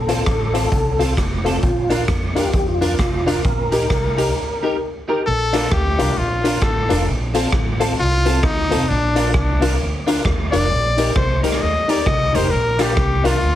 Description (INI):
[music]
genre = ska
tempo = 132 BPM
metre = 4/4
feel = swing 60% on 8ths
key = unclear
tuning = A4 = 441 Hz
[part]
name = mellow tonewheel organ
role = melody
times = 0.0-4.8 s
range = F4 to Bb4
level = -23 LUFS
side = equal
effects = chorus vibrato, slow rotary speaker, slapback echo
[part]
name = upright bass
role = bass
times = 0.0-13.6 s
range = F1 to F2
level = -22 LUFS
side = equal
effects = none
[part]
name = clean electric guitar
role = accompaniment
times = 0.1-13.4 s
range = C4 to Bb4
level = -26 LUFS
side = right 3 dB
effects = ensemble chorus
[part]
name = honky-tonk upright piano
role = stabs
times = 0.1-13.3 s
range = C4 to Bb4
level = -23 LUFS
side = left 4 dB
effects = slapback echo
[part]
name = raw garage drum kit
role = drums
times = 0.1-13.3 s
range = hi-hat, kick drum, rim click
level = -21 LUFS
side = equal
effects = none
[part]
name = bright trumpet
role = melody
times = 5.3-13.6 s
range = D4 to Eb5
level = -20 LUFS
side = left 2 dB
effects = slapback echo
[sound]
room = light reverb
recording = heavily compressed radio sound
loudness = -16 LUFS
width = side -12 dB against mid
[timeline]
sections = 0.0-5.3 A section; 5.3-13.6 B section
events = break 4.4-5.3; trumpet solo 5.3-13.6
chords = 0.0 F; 1.6 Bb; 3.4 Eb/Bb; 5.3 F; 8.9 Bb; 10.7 Eb/Bb; 12.5 Bb